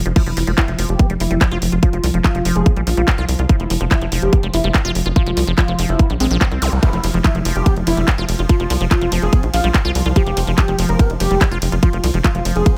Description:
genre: psychedelic trance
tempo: 144 BPM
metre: 4/4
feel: straight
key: unclear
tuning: A4 = 441 Hz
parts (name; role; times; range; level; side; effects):
- swarming drone; sustained chords; 0.0-12.8 s; F3; -29 LUFS; equal; none
- tight sequencer bass; bass; 0.0-12.6 s; F1 to C2; -21 LUFS; equal; none
- liquid acid bass; riff; 0.1-12.8 s; F3 to F4; -27 LUFS; equal; phaser, sidechain pumping, dub echo
- garage drum kit; drums; 0.1-12.7 s; crash cymbal, handclaps, hi-hat, ride cymbal; -26 LUFS; equal; none
- unison lead; melody; 0.2-12.7 s; C4 to Bb4; -25 LUFS; equal; phaser, sidechain pumping, dub echo
- electronic kick drum; drums; 0.2-12.7 s; none; -16 LUFS; equal; none
- zap; sound effects; 6.6-6.7 s; none; -29 LUFS; equal; none
room: little or no reverb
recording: none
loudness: -16 LUFS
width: mono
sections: 0.0-12.8 A section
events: break 0.0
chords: 0.0 F5

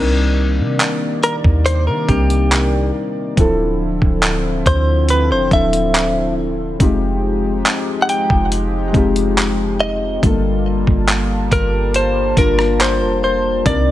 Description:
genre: contemporary R&B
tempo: 70 BPM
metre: 4/4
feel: straight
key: unclear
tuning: A4 = 445 Hz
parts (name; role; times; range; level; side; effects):
- muted felt-like synth keys; accompaniment; 0.0-13.9 s; F3 to Bb4; -20 LUFS; left 3 dB; chorus
- chorused pulse-width pad; sustained chords; 0.0-13.9 s; C3 to A5; -24 LUFS; equal; none
- soft 808-style bass; bass; 0.0-13.9 s; D1 to Eb3; -19 LUFS; equal; none
- dusty soul sampler-style drum kit; drums; 0.8-13.9 s; handclaps, hi-hat, kick drum, rim click; -18 LUFS; equal; vintage 12-bit sampler grit
- direct-recorded clean electric guitar; melody; 1.2-13.9 s; G4 to G5; -18 LUFS; equal; digital delay
room: little or no reverb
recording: none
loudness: -14 LUFS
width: side -14 dB against mid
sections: 0.0-13.7 A section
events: none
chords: 0.0 Cm9; 3.4 Dm9; 6.8 Fm9; 10.2 Gm9

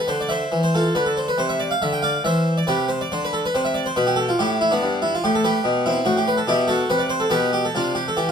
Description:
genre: classical, baroque-style suite movement for harpsichord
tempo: 94 BPM (dotted quarters)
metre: 12/8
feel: rubato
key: C major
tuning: A4 = 439 Hz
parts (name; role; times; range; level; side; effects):
- harpsichord; solo; 0.0-8.3 s; G2 to G5; -18 LUFS; equal; none
room: moderate stone room reverb, RT60 1.0 s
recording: close, detailed microphones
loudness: -18 LUFS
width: side -7 dB against mid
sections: 0.0-8.3 A section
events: none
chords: 0.0 F5; 0.9 Cmaj9; 2.2 C; 4.8 G; 6.1 Am13; 7.3 G/B

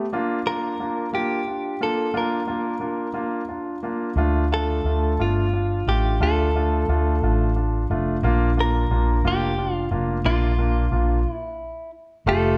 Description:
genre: six-eight pop ballad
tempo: 59 BPM (dotted quarters)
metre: 6/8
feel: straight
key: unclear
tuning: A4 = 440 Hz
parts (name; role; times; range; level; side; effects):
- warm concert grand piano; accompaniment; 0.0-12.5 s; A3 to G4; -27 LUFS; equal; none
- direct-recorded clean electric guitar; melody; 0.5-12.6 s; F4 to Bb4; -29 LUFS; equal; none
- woody fretless electric bass; bass; 4.2-12.6 s; F1 to D2; -24 LUFS; equal; none
room: moderate large studio reverb, RT60 1.3 s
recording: band playing live in one room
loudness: -23 LUFS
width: mono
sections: 0.0-12.3 A section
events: stop 11.3-12.3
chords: 0.1 Bb; 4.2 Dm; 8.2 Bb

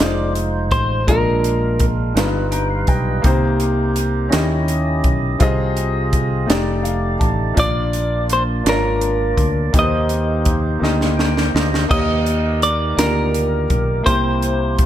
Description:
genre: slow gospel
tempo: 56 BPM (dotted quarters)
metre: 6/8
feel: straight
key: Eb major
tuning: A4 = 442 Hz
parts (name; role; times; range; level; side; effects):
- clean electric guitar; melody; 0.0-1.9, 7.6-14.9 s; Bb4 to Eb5; -21 LUFS; equal; none
- clear baby grand piano; accompaniment; 0.0-14.9 s; G2 to Bb5; -22 LUFS; left 1 dB; none
- tonewheel organ; sustained chords; 0.0-14.9 s; G3 to G5; -25 LUFS; right 1 dB; fast rotary speaker, overdrive
- fingered electric bass; bass; 0.0-14.9 s; F1 to Eb2; -21 LUFS; equal; none
- crisp fusion drum kit; drums; 0.0-14.9 s; crash cymbal, hi-hat, kick drum, snare drum; -20 LUFS; equal; none
room: light reverb, small room ambience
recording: none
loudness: -15 LUFS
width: side -11 dB against mid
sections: 0.0-11.9 A section; 11.9-14.9 A section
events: grand piano fill 2.2-3.2, 6.5-7.6; tonewheel organ fill 2.2-3.2, 10.8-11.9; drum fill 10.8-11.9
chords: 0.0 Fm7; 1.1 Bb7; 2.2 Gaug7; 3.2 Cm7; 4.3 Eb7b9; 5.4 Ab6/C; 6.5 F13; 7.6 Bb; 9.7 Eb6; 11.9 Ebmaj7; 14.1 C7

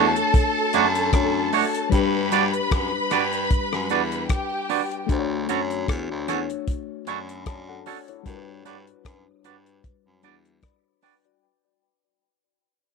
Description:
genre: lovers rock reggae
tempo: 76 BPM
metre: 4/4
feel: swing 55% on 16ths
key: unclear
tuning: A4 = 440 Hz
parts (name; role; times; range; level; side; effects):
- warm symphonic string section; second line; 0.0-5.1 s; G4 to B5; -25 LUFS; equal; none
- mellow FM electric piano; accompaniment; 0.0-11.6 s; G3 to B5; -28 LUFS; left 12 dB; chorus, tape echo
- twangy electric guitar; stabs; 0.0-11.1 s; A3 to D5; -23 LUFS; right 16 dB; none
- breathy baritone saxophone; bass; 0.0-10.6 s; D2 to G2; -29 LUFS; right 2 dB; none
- damped 70s drum kit; drums; 0.2-11.4 s; hi-hat, kick drum, rim click; -23 LUFS; left 1 dB; none
room: moderate spring reverb, RT60 1.6 s, small room ambience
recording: 1960s-style stereo with parts hard left and right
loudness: -20 LUFS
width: side -4 dB against mid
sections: 0.0-11.4 A section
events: fade-out 0.0-11.4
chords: 0.0 Dmaj7; 1.9 Gmaj7; 5.1 Dmaj7; 8.3 Gmaj7

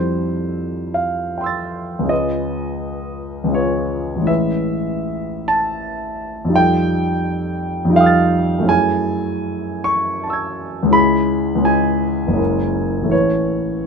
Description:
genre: classical, impressionist solo piano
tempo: 67-87 BPM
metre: 3/4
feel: rubato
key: unclear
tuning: A4 = 439 Hz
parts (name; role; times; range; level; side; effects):
- warm grand piano; solo; 0.0-13.9 s; F#1 to A6; -16 LUFS; equal; none
room: moderate studio reverb, RT60 0.5 s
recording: minimal, uncompressed stereo recording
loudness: -16 LUFS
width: side -5 dB against mid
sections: 0.0-13.9 A section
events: none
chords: 0.0 Fmaj9; 2.1 Db9; 4.3 Amaj9; 6.6 F9; 8.7 F#m9; 10.9 C#m7; 12.4 F#9; 13.1 Aadd9

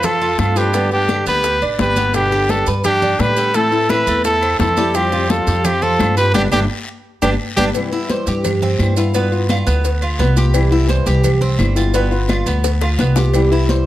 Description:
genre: latin, Cuban son and guajira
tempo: 172 BPM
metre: 4/4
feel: straight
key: C major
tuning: A4 = 441 Hz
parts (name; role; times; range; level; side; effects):
- warm trumpet; melody; 0.0-7.7 s; G4 to B4; -17 LUFS; equal; plate reverb
- breathy bright jazz flute; second line; 0.0-7.7 s; C4 to G4; -26 LUFS; right 4 dB; none
- nylon-string guitar; accompaniment; 0.0-13.9 s; B2 to G4; -22 LUFS; left 4 dB; none
- Cuban tres; arpeggios; 0.0-13.9 s; G3 to C5; -22 LUFS; right 3 dB; none
- upright bass; bass; 0.0-13.8 s; G1 to A2; -18 LUFS; equal; none
- bongos and cowbell; percussion; 0.0-13.9 s; none; -27 LUFS; left 9 dB; none
- claves; percussion; 0.0-13.5 s; none; -31 LUFS; right 1 dB; none
- congas; percussion; 0.0-13.9 s; none; -24 LUFS; left 1 dB; none
- guiro; percussion; 0.0-13.9 s; none; -33 LUFS; left 5 dB; none
- maracas; percussion; 0.0-13.9 s; none; -32 LUFS; right 7 dB; none
room: light reverb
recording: close, detailed microphones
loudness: -14 LUFS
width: side -14 dB against mid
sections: 0.0-7.7 A section; 7.7-13.9 B section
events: band accent 6.3-7.7; drum fill 7.0-7.7, 12.6-13.3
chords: 0.0 F; 0.7 Gadd9; 3.5 Am; 4.9 Fsus2; 6.3 G; 7.7 Cmaj7; 9.1 G7; 10.5 Cmaj7; 11.9 G7; 13.3 Cmaj7

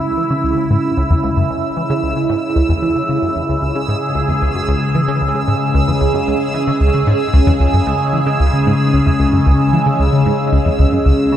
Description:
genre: ambient, sequencer-driven space music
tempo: 113 BPM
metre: 4/4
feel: straight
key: C# minor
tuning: A4 = 440 Hz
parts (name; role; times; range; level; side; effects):
- phased analog pad; sustained chords; 0.0-11.4 s; C#3 to G#4; -16 LUFS; equal; phaser, chorus
- bubbling stepped-filter texture; texture; 0.0-11.4 s; E6; -24 LUFS; equal; chorus, built-in reverb
- tight sequenced synth; riff; 0.2-11.4 s; C#2 to E3; -16 LUFS; equal; chorus, phaser, tape echo
room: moderate plate reverb, RT60 2.9 s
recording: dreamy mix soaked in reverb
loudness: -13 LUFS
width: side -10 dB against mid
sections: 0.0-11.4 A section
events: none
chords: 0.0 C#m

